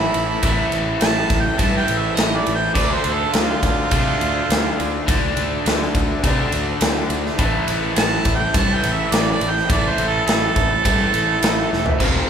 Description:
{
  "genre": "blues rock power trio and southern rock",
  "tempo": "104 BPM",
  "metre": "4/4",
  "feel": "straight",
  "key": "A minor",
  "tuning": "A4 = 438 Hz",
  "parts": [
    { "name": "clear harmonica", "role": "melody", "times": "0.0-12.0 s", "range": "E4 to A5", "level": "-22 LUFS", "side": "right 4 dB", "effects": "overdrive" },
    { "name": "overdriven electric guitar", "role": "riff", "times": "0.0-12.3 s", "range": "F2 to D4", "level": "-22 LUFS", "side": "left 1 dB", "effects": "none" },
    { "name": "fuzz fingered electric bass", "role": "bass", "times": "0.0-12.2 s", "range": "E1 to C3", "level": "-25 LUFS", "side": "equal", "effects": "overdrive" },
    { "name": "big rock drum kit", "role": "drums", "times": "0.1-12.1 s", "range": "crash cymbal, kick drum, ride cymbal, snare drum, toms", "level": "-20 LUFS", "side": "equal", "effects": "none" }
  ],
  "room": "moderate large studio reverb, RT60 0.8 s",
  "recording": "band playing live in one room",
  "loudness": "-16 LUFS",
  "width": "side -8 dB against mid",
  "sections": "0.0-12.3 A section",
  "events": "harmonica solo 0.0-12.3; drum fill 11.7",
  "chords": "0.0 A5; 2.8 Dm; 7.4 A5",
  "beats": "| 0.44 1.02 1.60 2.17 | 2.75 3.33 3.91 4.49 | 5.07 5.65 6.23 6.81 | 7.39 7.97 8.55 9.12 | 9.70 10.28 10.86 11.44 | 12.01"
}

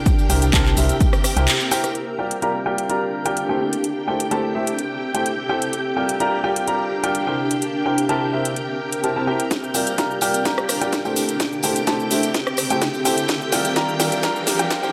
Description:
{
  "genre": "piano house",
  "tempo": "127 BPM",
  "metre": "4/4",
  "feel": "straight",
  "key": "G dorian",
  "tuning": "A4 = 440 Hz",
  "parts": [
    { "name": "string machine, violins", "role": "sustained chords", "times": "0.0-14.9 s", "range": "G4 to G5", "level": "-30 LUFS", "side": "equal", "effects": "ensemble chorus, sidechain pumping" },
    { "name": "granular cloud pad", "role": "texture", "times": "0.0-14.9 s", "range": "C4 to G5", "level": "-29 LUFS", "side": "equal", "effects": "built-in reverb, sidechain pumping" },
    { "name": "electronic kick drum", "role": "drums", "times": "0.1-1.1, 9.5-14.8 s", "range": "none", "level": "-22 LUFS", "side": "equal", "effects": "overdrive, high-pass filter on kick, high-pass filter on room" },
    { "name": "house drum kit", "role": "drums", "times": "0.1-14.9 s", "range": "cabasa, handclaps, hi-hat, rim click, snare drum", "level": "-26 LUFS", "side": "equal", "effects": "overdrive, high-pass filter on hats, high-pass filter on perc, high-pass filter on snare, high-pass filter on room" },
    { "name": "tambourine", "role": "percussion", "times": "0.1-1.9, 9.5-14.9 s", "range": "none", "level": "-35 LUFS", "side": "equal", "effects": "none" },
    { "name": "clear upright piano", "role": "riff", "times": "0.3-14.9 s", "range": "C3 to Bb5", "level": "-25 LUFS", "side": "equal", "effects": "sidechain pumping, low-pass filter, tape echo" },
    { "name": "organ-like FM bass", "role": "bass", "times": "0.3-1.5 s", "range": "C2", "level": "-21 LUFS", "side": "equal", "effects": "sidechain pumping" },
    { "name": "riser", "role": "sound effects", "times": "11.3-14.9 s", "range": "none", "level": "-35 LUFS", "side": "equal", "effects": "none" }
  ],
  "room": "moderate digital room reverb, RT60 1.1 s, digital ambience",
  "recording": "high-pass filter",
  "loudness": "-21 LUFS",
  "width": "mono",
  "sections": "0.0-1.9 A section; 1.9-9.5 B section; 9.5-14.9 C section",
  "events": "kick drops out 1.5-1.9; band accent 1.5; filter sweep on string machine 1.9-9.5; build-up 9.5-14.9; drum fill 9.5-14.9; filter sweep on upright piano 9.5-14.9; riser 11.3-14.9",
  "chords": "0.0 C7; 1.9 Gm7; 3.6 Am7; 5.7 Gm7; 7.4 C7; 9.5 Gm7; 11.2 Am7; 13.3 Gm7",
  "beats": "| 0.06 0.53 1.01 1.48 | 1.95 2.42 2.90 3.37 | 3.84 4.31 4.79 5.26 | 5.73 6.20 6.67 7.15 | 7.62 8.09 8.56 9.04 | 9.51 9.98 10.45 10.93 | 11.40 11.87 12.34 12.82 | 13.29 13.76 14.23 14.71"
}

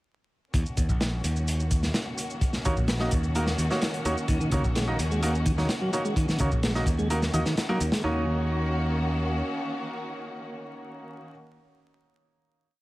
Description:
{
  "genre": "breakbeat, breaks",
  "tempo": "128 BPM",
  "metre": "4/4",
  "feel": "straight",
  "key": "Eb minor",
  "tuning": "A4 = 444 Hz",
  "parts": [
    { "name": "clear symphonic string section", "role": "sustained chords", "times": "0.5-11.3 s", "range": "Eb3 to Gb4", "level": "-34 LUFS", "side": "left 1 dB", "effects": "sidechain pumping" },
    { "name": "modern bright picked electric bass", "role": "bass", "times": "0.5-9.4 s", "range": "Bb1 to Eb2", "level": "-28 LUFS", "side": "equal", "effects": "tube saturation" },
    { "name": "crunchy breakbeat drum kit", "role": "drums", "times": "0.5-8.0 s", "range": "hi-hat, kick drum, snare drum", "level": "-28 LUFS", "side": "equal", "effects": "none" },
    { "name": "shaker", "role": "drums", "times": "0.5-8.0 s", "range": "none", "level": "-40 LUFS", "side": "right 2 dB", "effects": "none" },
    { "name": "bright baby grand piano", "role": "stabs", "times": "2.7-11.3 s", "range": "Bb3 to Eb5", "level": "-32 LUFS", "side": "right 1 dB", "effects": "digital delay" },
    { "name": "mellow tonewheel organ", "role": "riff", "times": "4.3-8.3 s", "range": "Db3 to Ab3", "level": "-30 LUFS", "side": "equal", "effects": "slow rotary speaker, digital delay" }
  ],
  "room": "small room ambience",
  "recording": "vinyl crackle",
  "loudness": "-24 LUFS",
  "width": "side -18 dB against mid",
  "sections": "0.5-8.0 groove; 8.0-11.8 final chord",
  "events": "none",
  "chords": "0.5 Ebm7",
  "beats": "| 0.54 1.01 1.48 1.95 | 2.42 2.88 3.35 3.82 | 4.29 4.76 5.23 5.70 | 6.17 6.63 7.10 7.57 | 8.04 8.51 8.98 9.45 | 9.92 10.38 10.85"
}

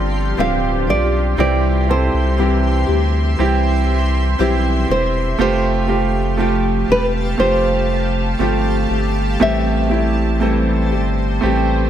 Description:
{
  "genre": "pop ballad",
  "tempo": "60 BPM",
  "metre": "4/4",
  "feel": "straight",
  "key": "unclear",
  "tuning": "A4 = 440 Hz",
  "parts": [
    { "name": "nylon-string guitar", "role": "melody", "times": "0.0-10.9 s", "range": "B4 to F5", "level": "-20 LUFS", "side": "equal", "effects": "ping-pong delay" },
    { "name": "clear grand piano", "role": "accompaniment", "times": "0.0-11.9 s", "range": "A2 to A4", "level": "-20 LUFS", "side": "right 6 dB", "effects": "none" },
    { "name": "granular cloud pad", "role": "sustained chords", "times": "0.0-11.9 s", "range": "F4 to C6", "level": "-25 LUFS", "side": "left 1 dB", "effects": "built-in reverb" },
    { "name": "nylon-string guitar", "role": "arpeggios", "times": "0.0-11.9 s", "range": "G2 to G4", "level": "-24 LUFS", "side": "left 9 dB", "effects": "none" },
    { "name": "warm sub bass", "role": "bass", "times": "0.0-11.9 s", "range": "D1 to D2", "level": "-19 LUFS", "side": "equal", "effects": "none" }
  ],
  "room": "light reverb, studio reverb",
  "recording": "none",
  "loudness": "-14 LUFS",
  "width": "side -10 dB against mid",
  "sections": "0.0-11.9 A section",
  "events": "none",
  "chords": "0.0 G7sus4; 1.4 C; 5.4 Fadd9; 9.4 Am7",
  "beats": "0.38 | 1.39 2.39 3.39 4.39 | 5.39 6.39 7.39 8.40 | 9.41 10.42 11.44"
}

